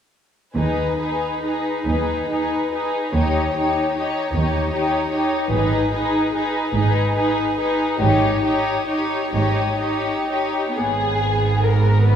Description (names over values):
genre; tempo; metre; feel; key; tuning
classical, slow romantic movement for string orchestra; 39-52 BPM (dotted quarters); 6/8; rubato; G# minor; A4 = 440 Hz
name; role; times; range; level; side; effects
warm studio violin section; melody; 0.6-12.2 s; B4 to D#5; -26 LUFS; left 4 dB; none
dark studio violin section; second line; 0.6-12.2 s; G4 to B4; -24 LUFS; left 2 dB; none
warm studio viola section; accompaniment; 0.6-12.2 s; B3 to D#4; -23 LUFS; right 1 dB; none
dark studio cello section; bass; 0.6-12.2 s; D#2 to G#2; -24 LUFS; right 2 dB; none
dark studio double bass section; bass; 0.6-12.2 s; G#1 to D#2; -24 LUFS; right 2 dB; none
room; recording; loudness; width
wet recital hall reverb, RT60 1.6 s; recorded in a church or concert hall; -18 LUFS; side -8 dB against mid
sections
0.6-10.8 A section; 10.8-12.2 B section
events
none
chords
0.6 G#m/D#; 5.5 G#m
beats
| 0.57 1.87 | 3.14 4.35 | 5.53 6.75 | 8.00 9.34 | 10.79 12.10